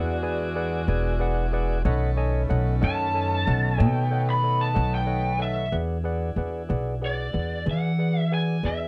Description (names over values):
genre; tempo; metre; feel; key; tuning
slow blues; 62 BPM (dotted quarters); 12/8; straight; E mixolydian; A4 = 440 Hz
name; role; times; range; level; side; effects
barky tine electric piano; accompaniment; 0.0-8.9 s; G#4 to A5; -33 LUFS; equal; none
mellow saxophone section; sustained chords; 0.0-5.7 s; G#3 to F#4; -37 LUFS; equal; none
tonewheel organ; sustained chords; 0.0-8.9 s; D#3 to D5; -40 LUFS; equal; slow rotary speaker
upright bass; bass; 0.0-8.9 s; E1 to E3; -27 LUFS; equal; none
lead guitar through a small cranked amp; melody; 2.8-8.9 s; D5 to B5; -30 LUFS; equal; overdrive, slapback echo
room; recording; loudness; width
light reverb; dry, close 1970s-style studio recording; -25 LUFS; mono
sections
0.0-5.7 A section; 5.7-8.9 B section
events
lead electric guitar solo 0.0-5.7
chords
0.0 E9; 1.9 B9; 5.7 E9